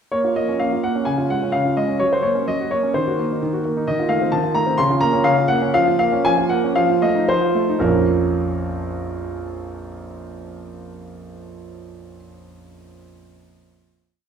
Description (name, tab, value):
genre	classical-period piano sonatina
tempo	111-131 BPM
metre	4/4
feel	straight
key	Bb minor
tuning	A4 = 440 Hz
part	warm concert grand piano	solo	0.1-14.3 s	Bb1 to C6	-18 LUFS	equal	none
room	wet recital hall reverb, RT60 1.6 s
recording	heard from further back in the room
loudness	-17 LUFS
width	side -7 dB against mid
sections	0.1-7.8 A section; 7.8-12.0 final chord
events	slowing down 2.9-7.8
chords	0.1 Bbm; 1.1 Db; 2.0 Gb; 2.9 Cm7b5/Eb; 3.9 F7/Eb; 4.8 Bbm/Db; 5.7 Bbm/F; 6.7 F7; 7.8 Bbm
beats	| 0.12 0.59 1.06 1.53 | 2.00 2.47 2.94 3.40 | 3.85 4.31 4.78 5.26 | 5.74 6.24 6.75 7.26 | 7.80 8.33 8.86 9.39 | 9.91 10.44 10.97 11.50